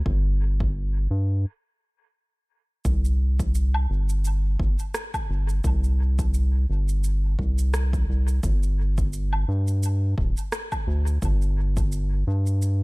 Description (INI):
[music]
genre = ambient dub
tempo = 86 BPM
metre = 4/4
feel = swing 56% on 16ths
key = unclear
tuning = A4 = 439 Hz
[part]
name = round analog bass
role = bass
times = 0.0-12.8 s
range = D1 to G2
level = -22 LUFS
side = equal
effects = none
[part]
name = electronic kick drum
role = drums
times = 0.1-11.9 s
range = none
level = -28 LUFS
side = equal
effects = overdrive, small room ambience
[part]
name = electronic shaker, woodblock and rim click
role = drums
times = 2.9-12.8 s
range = none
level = -34 LUFS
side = right 1 dB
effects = small room ambience, dub echo
[sound]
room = little or no reverb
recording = none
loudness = -21 LUFS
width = side -25 dB against mid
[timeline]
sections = 0.0-2.9 A section; 2.9-12.8 A section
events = stop 1.5-2.9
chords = none